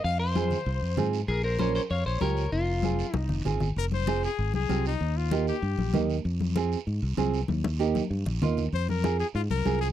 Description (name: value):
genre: latin, cumbia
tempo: 194 BPM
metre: 4/4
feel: straight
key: F minor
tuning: A4 = 440 Hz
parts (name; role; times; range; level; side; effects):
- electric guitar at the edge of break-up; melody; 0.0-3.4 s; F4 to F5; -32 LUFS; left 2 dB; spring reverb, slapback echo
- warm trumpet; second line; 0.0-6.1, 8.7-9.9 s; Eb4 to F5; -34 LUFS; left 10 dB; none
- fingered electric bass; bass; 0.0-9.9 s; F1 to Ab2; -28 LUFS; equal; none
- congas; percussion; 0.0-9.8 s; none; -32 LUFS; left 4 dB; none
- guiro; percussion; 0.0-9.9 s; none; -44 LUFS; right 13 dB; none
- nylon-string guitar; accompaniment; 0.3-9.9 s; Bb3 to Bb4; -29 LUFS; right 9 dB; none
room: light reverb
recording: dry, close 1970s-style studio recording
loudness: -25 LUFS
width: side -11 dB against mid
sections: 0.0-3.8 A section; 3.8-9.9 B section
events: drum fill 2.8-3.8, 7.5-8.7; trumpet solo 3.8-9.9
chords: 0.0 Fm; 1.3 Bbm; 2.5 Fm; 5.0 Eb; 6.2 Fm; 7.5 Eb; 8.7 Fm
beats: | 0.04 0.35 0.67 0.98 | 1.29 1.60 1.91 2.22 | 2.53 2.84 3.15 3.46 | 3.77 4.08 4.39 4.70 | 5.01 5.32 5.63 5.94 | 6.25 6.56 6.87 7.18 | 7.49 7.80 8.11 8.42 | 8.73 9.04 9.35 9.66